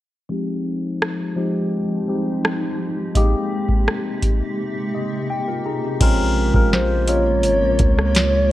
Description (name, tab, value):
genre	contemporary R&B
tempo	84 BPM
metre	4/4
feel	straight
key	F minor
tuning	A4 = 440 Hz
part	mellow tine electric piano	accompaniment	0.3-8.5 s	F3 to Bb5	-22 LUFS	left 1 dB	phaser, low-pass filter
part	granular cloud pad	sustained chords	1.6-8.5 s	C3 to G4	-28 LUFS	right 1 dB	built-in reverb, sidechain pumping, low-pass filter
part	booming analog drum machine	drums	1.0-8.3 s	crash cymbal, hi-hat, kick drum, rim click, snare drum	-19 LUFS	equal	none
part	long sustained 808-style bass	bass	6.0-8.5 s	Ab1 to Db2	-20 LUFS	equal	none
part	hollow clarinet-like synth lead	melody	6.7-8.5 s	C5 to Db5	-20 LUFS	equal	chorus
room	light reverb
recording	worn, warbling old tape, cassette tape, warbly pitch drift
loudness	-18 LUFS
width	side -14 dB against mid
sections	0.3-6.0 A section; 6.0-8.5 B section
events	filter sweep 0.3-6.0; break 4.6-6.0; tine electric piano fill 4.6-6.0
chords	0.3 Fm9; 3.2 Abmaj9; 6.0 Bbm9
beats	| 0.29 1.01 1.72 2.44 | 3.15 3.87 4.58 5.29 | 6.01 6.72 7.44 8.15